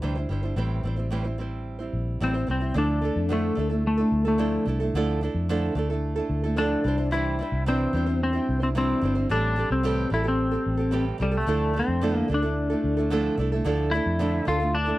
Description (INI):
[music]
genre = acoustic pop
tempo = 110 BPM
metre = 4/4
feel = straight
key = D minor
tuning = A4 = 440 Hz
[part]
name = nylon-string guitar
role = accompaniment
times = 0.0-15.0 s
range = A2 to C5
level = -28 LUFS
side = right 3 dB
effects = none
[part]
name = vintage muted fingered electric bass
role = bass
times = 0.0-14.9 s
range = G1 to F2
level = -27 LUFS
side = equal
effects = none
[part]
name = clean lap steel guitar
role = melody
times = 2.2-15.0 s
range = G3 to F4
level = -25 LUFS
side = left 2 dB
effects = none
[sound]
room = little or no reverb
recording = dry, close 1970s-style studio recording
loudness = -22 LUFS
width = side -16 dB against mid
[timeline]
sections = 0.0-2.8 A section; 2.8-15.0 B section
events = none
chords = 0.0 Cadd9; 0.6 Am7; 2.8 Dmadd9; 6.8 Cadd9; 9.3 Am7; 11.5 Dmadd9